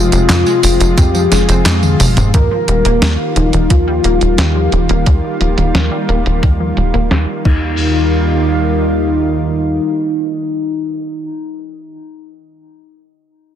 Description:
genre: synthwave.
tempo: 88 BPM.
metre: 4/4.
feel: straight.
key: Eb major.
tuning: A4 = 441 Hz.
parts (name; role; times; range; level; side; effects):
soft octave-layered synth lead; melody; 0.0-11.3 s; Eb4 to Bb4; -17 LUFS; left 2 dB; chorus, phaser, tape echo.
lush unison pad; sustained chords; 0.0-11.3 s; C3 to F4; -19 LUFS; right 1 dB; chorus, sidechain pumping.
wide unison pluck; arpeggios; 0.0-8.1 s; C3 to C4; -22 LUFS; left 1 dB; ping-pong delay.
tight sequencer bass; bass; 0.0-9.8 s; Eb1 to F2; -15 LUFS; equal; sidechain pumping.
clean 12-bit digital drum machine; drums; 0.1-7.6 s; crash cymbal, handclaps, hi-hat, snare drum, tambourine, toms; -18 LUFS; equal; low-pass filter on hats, low-pass filter on perc, low-pass filter on snare, low-pass filter on toms, low-pass filter on cymbals, low-pass filter on room.
electronic kick drum; drums; 1.0-7.6 s; none; -12 LUFS; equal; none.
room: light reverb.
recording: dense, heavily limited modern master.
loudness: -11 LUFS.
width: side -10 dB against mid.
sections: 0.0-2.3 A section; 2.3-7.8 B section; 7.8-10.5 C section.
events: drum fill 1.8-2.3; filter sweep on analog synth bass 2.3-7.8; filter sweep on synth arpeggio sound 2.3-7.8.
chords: 0.0 Fm; 2.3 Ebadd9.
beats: 0.29 0.97 1.66 | 2.34 3.02 3.70 4.38 | 5.07 5.75 6.43 7.11 | 7.79 8.47 9.16 9.84.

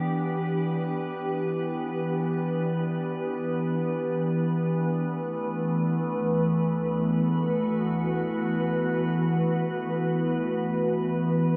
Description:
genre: ambient.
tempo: free time.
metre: none.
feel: none.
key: unclear.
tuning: A4 = 438 Hz.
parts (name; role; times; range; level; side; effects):
glassy FM pad; solo; 0.0-11.6 s; E3 to B4; -27 LUFS; equal; ensemble chorus, built-in reverb, tape echo.
room: wet plate reverb, RT60 2.9 s.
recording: echo-heavy mix.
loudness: -27 LUFS.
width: mono.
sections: 0.0-11.6 A section.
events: none.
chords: 0.0 Em7; 4.1 B7sus4.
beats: free time.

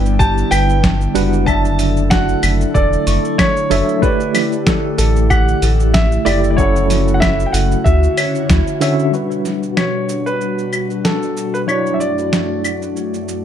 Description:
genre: sunset chillout.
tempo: 94 BPM.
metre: 4/4.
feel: swing 55% on 16ths.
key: G lydian.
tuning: A4 = 440 Hz.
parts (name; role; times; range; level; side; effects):
warm grand piano; melody; 0.0-13.4 s; A4 to A5; -21 LUFS; right 1 dB; tape echo.
tine electric piano; accompaniment; 0.0-13.4 s; D3 to F#5; -20 LUFS; moving between left 3 dB and right 3 dB; overdrive, medium stereo tremolo, auto-pan.
airy breathy pad; sustained chords; 0.0-13.4 s; F#2 to A4; -22 LUFS; equal; chorus.
round analog bass; bass; 0.0-8.6 s; E1 to D2; -16 LUFS; equal; none.
dusty soul sampler-style drum kit; drums; 0.1-13.4 s; cabasa, claves, hi-hat, snare drum; -20 LUFS; equal; overdrive.
mellow electric guitar; arpeggios; 0.2-9.1 s; E4 to C#6; -25 LUFS; left 2 dB; ping-pong delay.
electronic kick drum; drums; 0.2-8.6 s; none; -18 LUFS; equal; overdrive.
room: light reverb, digital ambience.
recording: dark, warm production.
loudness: -13 LUFS.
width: side -9 dB against mid.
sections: 0.0-9.1 A section; 9.1-13.4 B section.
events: none.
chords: 0.0 Gmaj7; 1.5 Dmaj7/F#; 4.0 A7sus4; 6.6 F#m7; 7.9 Dmaj9; 9.1 Gmaj7; 11.7 D/F#.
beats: 0.20 0.83 | 1.47 2.11 2.75 3.39 | 4.03 4.67 5.30 5.94 | 6.58 7.22 7.86 8.49 | 9.13 9.77 10.41 11.05 | 11.69 12.32 12.96.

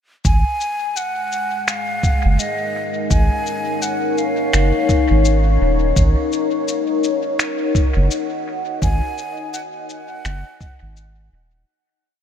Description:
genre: ambient dub.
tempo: 84 BPM.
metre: 4/4.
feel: swing 59% on 16ths.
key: unclear.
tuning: A4 = 440 Hz.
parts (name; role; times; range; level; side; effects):
soft dub sub bass; bass; 0.2-11.6 s; Eb1 to Ab1; -16 LUFS; equal; none.
electronic kick drum; drums; 0.2-10.8 s; none; -19 LUFS; equal; none.
electronic shaker and finger snaps; drums; 0.2-11.1 s; none; -28 LUFS; left 2 dB; dub echo.
breathy mellow silver concert flute; melody; 0.3-11.3 s; Eb5 to Ab5; -25 LUFS; equal; dub echo.
deep dark ambient pad; sustained chords; 1.6-11.7 s; Ab3 to Gb5; -21 LUFS; left 3 dB; chorus, built-in reverb.
room: moderate huge ambient reverb, RT60 8.6 s.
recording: dreamy mix soaked in reverb.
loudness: -16 LUFS.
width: side -9 dB against mid.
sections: 0.2-11.7 groove.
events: fade-out 7.9-11.7.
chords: 0.2 Ab9sus4.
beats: | 0.25 0.96 1.68 2.39 | 3.11 3.82 4.54 5.25 | 5.96 6.68 7.39 8.11 | 8.82 9.54 10.25 10.96.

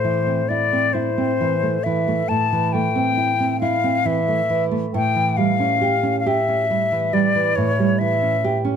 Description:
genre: romantic duo for flute and classical guitar.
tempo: 46 BPM (dotted quarters).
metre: 12/8.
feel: rubato.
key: A minor.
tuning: A4 = 442 Hz.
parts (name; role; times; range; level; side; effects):
bright silver concert flute; melody; 0.0-8.6 s; C5 to A5; -20 LUFS; left 5 dB; none.
nylon-string guitar; accompaniment; 0.0-8.8 s; A2 to G4; -20 LUFS; right 4 dB; none.
room: light reverb.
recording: close, detailed microphones.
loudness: -17 LUFS.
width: side -7 dB against mid.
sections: 0.0-8.8 A section.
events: none.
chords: 0.0 Am; 4.9 A7.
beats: 0.96 2.31 3.63 | 4.94 6.26 7.57.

